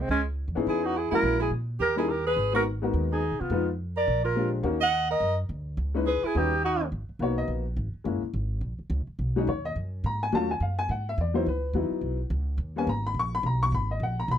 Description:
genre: jazz, small-group swing and bop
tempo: 212 BPM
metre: 4/4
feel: swing 60% on 8ths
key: G# minor from 6.9 s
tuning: A4 = 444 Hz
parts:
  - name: breathy alto saxophone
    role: melody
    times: 0.0-6.8 s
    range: B#3 to F#5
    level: -26 LUFS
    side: equal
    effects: none
  - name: breathy tenor saxophone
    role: second line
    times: 0.0-6.9 s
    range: G#3 to D#5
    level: -31 LUFS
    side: right 9 dB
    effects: none
  - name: upright bass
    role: bass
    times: 0.0-14.4 s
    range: F#1 to C3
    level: -29 LUFS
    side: equal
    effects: none
  - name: warm upright piano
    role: accompaniment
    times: 0.6-14.4 s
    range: F#3 to C#6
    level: -28 LUFS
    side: left 4 dB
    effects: none
room: little or no reverb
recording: close, detailed microphones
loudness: -25 LUFS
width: side -9 dB against mid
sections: 0.0-6.9 A section; 6.9-14.4 B section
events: none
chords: 0.1 C#m9; 1.2 A#m7b5; 1.8 D#7b9; 2.4 G#m9; 3.5 Fm7b5; 4.1 A#7; 4.6 D#m7; 5.8 C#m9; 6.3 D#7alt; 6.9 G#m9; 8.0 F#9; 9.2 B69; 10.3 D#m7b5; 10.9 G#m7; 11.5 C#m11; 12.6 D#7(no3); 13.7 G#m9

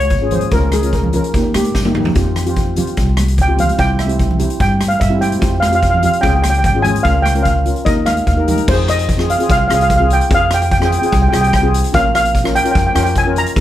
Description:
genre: calypso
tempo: 147 BPM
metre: 4/4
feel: straight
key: F minor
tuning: A4 = 440 Hz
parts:
  - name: steel pan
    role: melody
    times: 0.0-13.6 s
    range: G4 to Bb5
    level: -16 LUFS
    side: right 1 dB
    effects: none
  - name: steel pan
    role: accompaniment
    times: 0.0-13.6 s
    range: Bb3 to Bb4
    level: -20 LUFS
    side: left 1 dB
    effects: none
  - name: upright bass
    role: bass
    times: 0.0-13.6 s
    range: Ab1 to Bb2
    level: -17 LUFS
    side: equal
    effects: none
  - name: street-band drum kit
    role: drums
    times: 0.0-13.6 s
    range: crash cymbal, hi-hat, kick drum, rim click, snare drum, toms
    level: -19 LUFS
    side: equal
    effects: none
  - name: congas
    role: percussion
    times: 0.3-8.7 s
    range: none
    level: -23 LUFS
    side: right 1 dB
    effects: none
room: moderate studio reverb, RT60 0.5 s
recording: heard from further back in the room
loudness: -12 LUFS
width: side -12 dB against mid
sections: 0.0-8.7 A section; 8.7-13.6 B section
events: steel pan solo 0.0-8.7; drum fill 1.7-2.2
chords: 0.0 Db; 0.5 Bbm/Db; 1.3 Ebadd9; 2.2 Fsus2; 3.8 C; 5.4 Fsus2; 6.2 Db; 7.1 Bbm/Db; 7.9 Ebadd9; 8.7 Fm; 11.9 Bbm

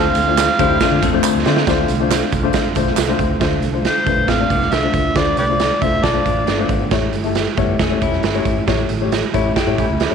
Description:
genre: uptempo 1960s-style soul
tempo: 137 BPM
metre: 4/4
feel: straight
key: D dorian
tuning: A4 = 436 Hz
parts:
  - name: overdriven harmonica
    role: melody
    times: 0.0-1.2, 3.9-6.7 s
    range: G4 to F5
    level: -18 LUFS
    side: right 1 dB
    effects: none
  - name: warm horn section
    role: second line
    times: 0.0-0.1, 9.8-10.1 s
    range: E3 to G4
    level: -27 LUFS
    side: right 12 dB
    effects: none
  - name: warm upright piano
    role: accompaniment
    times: 0.0-10.1 s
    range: A3 to D5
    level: -20 LUFS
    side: left 9 dB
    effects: none
  - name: percussive tonewheel organ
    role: sustained chords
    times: 0.0-3.4 s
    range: D3 to F4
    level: -28 LUFS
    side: right 1 dB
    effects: slow rotary speaker
  - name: vintage muted fingered electric bass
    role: bass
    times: 0.0-10.1 s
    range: E1 to D3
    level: -24 LUFS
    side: equal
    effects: none
  - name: raw garage drum kit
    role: drums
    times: 0.1-10.1 s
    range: hi-hat, kick drum, ride cymbal, snare drum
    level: -19 LUFS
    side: right 6 dB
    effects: none
  - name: tambourine and handclaps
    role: percussion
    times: 0.2-3.1 s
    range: none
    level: -27 LUFS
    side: right 12 dB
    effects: none
  - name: clean electric guitar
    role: riff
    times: 0.6-1.6, 4.3-10.1 s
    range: G3 to A4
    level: -24 LUFS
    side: left 9 dB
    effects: spring reverb
room: moderate echo chamber reverb, RT60 1.8 s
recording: 1960s-style stereo with parts hard left and right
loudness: -14 LUFS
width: side -6 dB against mid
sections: 0.0-1.7 A section; 1.7-3.4 B section; 3.4-10.1 C section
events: drum fill 1.2-1.7; band accent 8.7-10.1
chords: 0.0 Dm7; 6.9 A7

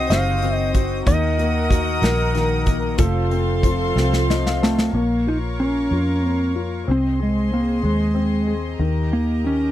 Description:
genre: six-eight pop ballad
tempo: 62 BPM (dotted quarters)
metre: 6/8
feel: straight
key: Bb minor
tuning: A4 = 444 Hz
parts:
  - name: electric slide guitar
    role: melody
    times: 0.0-9.7 s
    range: Ab3 to F5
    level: -22 LUFS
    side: right 1 dB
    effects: none
  - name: warm concert grand piano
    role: accompaniment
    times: 0.0-9.7 s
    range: Eb3 to A5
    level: -26 LUFS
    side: left 10 dB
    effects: none
  - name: rich studio string section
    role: sustained chords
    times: 0.0-9.7 s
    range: Gb4 to Eb6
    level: -27 LUFS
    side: left 1 dB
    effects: none
  - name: fingerpicked steel-string acoustic guitar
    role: arpeggios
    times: 0.0-5.0 s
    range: F2 to Gb4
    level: -28 LUFS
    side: right 7 dB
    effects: none
  - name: vintage muted fingered electric bass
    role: bass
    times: 0.0-9.7 s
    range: F1 to F2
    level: -22 LUFS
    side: equal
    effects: none
  - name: modern studio drum kit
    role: drums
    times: 0.1-4.9 s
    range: hi-hat, kick drum, snare drum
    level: -20 LUFS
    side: equal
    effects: none
room: little or no reverb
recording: dry, close 1970s-style studio recording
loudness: -18 LUFS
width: side -13 dB against mid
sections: 0.0-4.9 A section; 4.9-9.7 B section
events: drum fill 4.0-4.9; grand piano fill 4.0-4.9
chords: 0.0 Cdim; 1.1 Ebm; 3.0 F; 4.9 Bbm; 6.9 Ab/C; 8.8 Eb

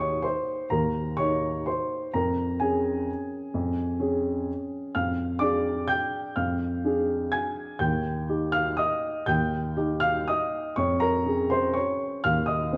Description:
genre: classical, piano waltz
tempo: 117-135 BPM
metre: 3/4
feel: rubato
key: unclear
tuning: A4 = 439 Hz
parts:
  - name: warm upright piano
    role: solo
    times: 0.0-12.8 s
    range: Eb2 to Ab6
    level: -27 LUFS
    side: equal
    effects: none
room: wet recital hall reverb, RT60 1.9 s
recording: dark, warm production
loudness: -27 LUFS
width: mono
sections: 0.0-12.8 A section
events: none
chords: 0.0 Eb; 2.1 Db/F; 5.0 Fm69; 7.8 Eb; 10.8 Db/F; 12.2 Cmadd11/Eb (rootless)

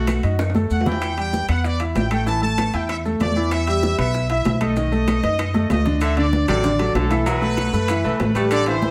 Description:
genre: latin, salsa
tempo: 192 BPM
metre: 4/4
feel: straight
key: unclear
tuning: A4 = 440 Hz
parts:
  - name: brilliant trumpet section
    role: melody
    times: 0.0-8.9 s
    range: F#4 to A5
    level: -28 LUFS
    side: equal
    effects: none
  - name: bright baby grand piano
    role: accompaniment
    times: 0.0-8.9 s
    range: D3 to E5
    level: -25 LUFS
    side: equal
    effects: none
  - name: upright bass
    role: bass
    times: 0.0-8.9 s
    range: A1 to F#2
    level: -25 LUFS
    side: equal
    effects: none
  - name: bongos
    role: percussion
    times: 0.1-8.9 s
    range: none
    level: -33 LUFS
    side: equal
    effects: none
  - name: claves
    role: percussion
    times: 0.1-8.7 s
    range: none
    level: -41 LUFS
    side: equal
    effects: none
  - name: congas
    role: percussion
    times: 0.1-8.9 s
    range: none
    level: -30 LUFS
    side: equal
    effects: none
  - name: maracas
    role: percussion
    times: 0.1-8.9 s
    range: none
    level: -46 LUFS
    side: equal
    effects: none
  - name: timbales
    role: percussion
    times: 0.1-8.9 s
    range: none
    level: -33 LUFS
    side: equal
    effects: none
  - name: bright baritone saxophone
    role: second line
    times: 6.0-8.8 s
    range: C3 to A3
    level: -28 LUFS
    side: equal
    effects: none
room: moderate large studio reverb, RT60 1.0 s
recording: none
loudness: -20 LUFS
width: mono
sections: 0.0-6.0 A section; 6.0-8.9 B section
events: drum fill 0.4-1.0, 5.1-6.0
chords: 0.0 B7; 1.0 Em; 2.3 A5; 3.5 Em; 4.8 B7; 6.0 D; 7.3 B7sus4

